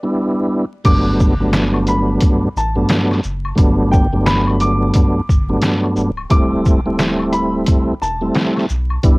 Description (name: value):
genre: hip hop, boom-bap hip-hop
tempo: 88 BPM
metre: 4/4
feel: swing 61% on 16ths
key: G major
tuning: A4 = 440 Hz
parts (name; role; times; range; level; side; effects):
- dark upright piano; melody; 0.0-8.3 s; D5 to D6; -23 LUFS; equal; cassette tape, tape echo
- tonewheel organ; accompaniment; 0.0-9.2 s; G2 to E4; -16 LUFS; equal; chorus vibrato, stopped rotary speaker, cassette tape
- trip hop sampler-style drum kit; drums; 0.8-9.2 s; crash cymbal, hi-hat, kick drum, shaker, snare drum; -15 LUFS; equal; none
- soft dub sub bass; bass; 0.9-9.2 s; C#1 to C2; -22 LUFS; equal; none
- tube shaker and woodblock; percussion; 0.9-9.2 s; none; -32 LUFS; left 4 dB; none
room: little or no reverb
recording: home recording on cassette, vinyl crackle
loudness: -13 LUFS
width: side -26 dB against mid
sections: 0.9-9.2 A section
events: break 0.0-0.9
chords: 0.0 Cmaj9 (rootless); 0.9 Gmaj9; 6.3 D9sus4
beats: 0.17 | 0.85 1.53 2.22 2.90 | 3.58 4.26 4.94 5.63 | 6.31 6.99 7.67 8.35 | 9.04